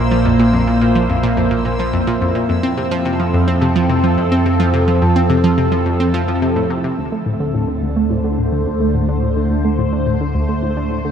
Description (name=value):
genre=ambient, sequencer-driven space music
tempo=107 BPM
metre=4/4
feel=straight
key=D minor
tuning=A4 = 440 Hz
part: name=phased analog pad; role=sustained chords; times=0.0-11.1 s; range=Bb2 to C5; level=-17 LUFS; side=equal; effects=phaser, chorus, shimmer reverb
part: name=analog pluck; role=riff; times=0.0-11.1 s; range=D2 to C4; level=-19 LUFS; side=right 1 dB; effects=chorus, analog delay, shimmer reverb
part: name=warm sub bass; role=bass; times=0.0-11.1 s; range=Bb1 to F2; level=-21 LUFS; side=equal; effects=none
part: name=bubbling stepped-filter texture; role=texture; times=0.0-7.0 s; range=E4 to E6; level=-31 LUFS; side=right 1 dB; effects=chorus, built-in reverb, shimmer reverb
room=wet cathedral reverb, RT60 5.7 s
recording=in a vast, echoing space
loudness=-14 LUFS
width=side -8 dB against mid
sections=0.0-7.0 A section; 7.0-11.1 B section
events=filter sweep on synth arpeggio sound 7.0-11.1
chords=0.0 Bbsus2; 2.5 F; 7.0 D5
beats=| 0.25 0.81 1.38 1.94 | 2.50 3.06 3.62 4.18 | 4.74 5.30 5.86 6.42 | 6.98 7.54 8.10 8.66 | 9.22 9.79 10.35 10.91